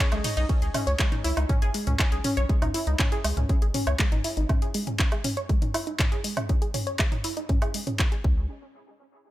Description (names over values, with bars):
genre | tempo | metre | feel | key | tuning
melodic techno | 120 BPM | 4/4 | straight | C# minor | A4 = 442 Hz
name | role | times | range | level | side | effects
wide unison pluck | arpeggios | 0.0-8.5 s | G#3 to D#5 | -31 LUFS | equal | sidechain pumping, dub echo
round analog bass | bass | 0.1-4.5, 8.2-8.5 s | G#1 to C#2 | -26 LUFS | equal | sidechain pumping
house drum kit | drums | 0.1-8.2 s | handclaps, hi-hat, ride cymbal, toms, woodblock | -29 LUFS | equal | sidechain pumping on hats, sidechain pumping on toms, sidechain pumping on cymbals, sidechain pumping on perc
electronic kick drum | drums | 0.5-8.3 s | none | -24 LUFS | equal | none
room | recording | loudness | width
little or no reverb | none | -23 LUFS | side -15 dB against mid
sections
0.5-8.5 A section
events
filter sweep on synth pluck 0.5-8.5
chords
0.5 C#5; 8.2 N.C.